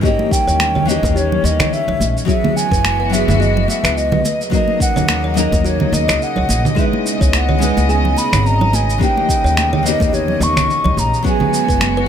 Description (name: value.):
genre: sunset chillout.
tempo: 107 BPM.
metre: 4/4.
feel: swing 57% on 16ths.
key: unclear.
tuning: A4 = 440 Hz.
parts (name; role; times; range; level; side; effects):
mellow hollow concert flute; melody; 0.0-12.1 s; C#5 to C#6; -19 LUFS; equal; tape echo.
nylon-string guitar; accompaniment; 0.0-12.1 s; E3 to B4; -21 LUFS; moving between left 6 dB and right 2 dB; auto-pan, digital delay.
warm studio string section; sustained chords; 0.0-12.1 s; B2 to D#5; -24 LUFS; left 3 dB; none.
kalimba; arpeggios; 0.0-12.1 s; F#4 to C#5; -28 LUFS; left 1 dB; digital delay.
electronic kick drum; drums; 0.0-11.8 s; none; -19 LUFS; equal; none.
electronic shaker, finger snaps and congas; drums; 0.0-11.9 s; none; -20 LUFS; right 3 dB; none.
congas and bongos; percussion; 0.2-11.9 s; none; -25 LUFS; right 2 dB; none.
upright bass; bass; 0.5-12.1 s; F#1 to D#2; -18 LUFS; equal; none.
room: light reverb, studio reverb.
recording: none.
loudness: -13 LUFS.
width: side -8 dB against mid.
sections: 0.0-12.1 A section.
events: none.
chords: 0.0 D#7b9; 2.3 F#9sus4; 4.2 D#m7; 6.8 C#m9; 9.0 D#7b9; 11.2 F#9sus4.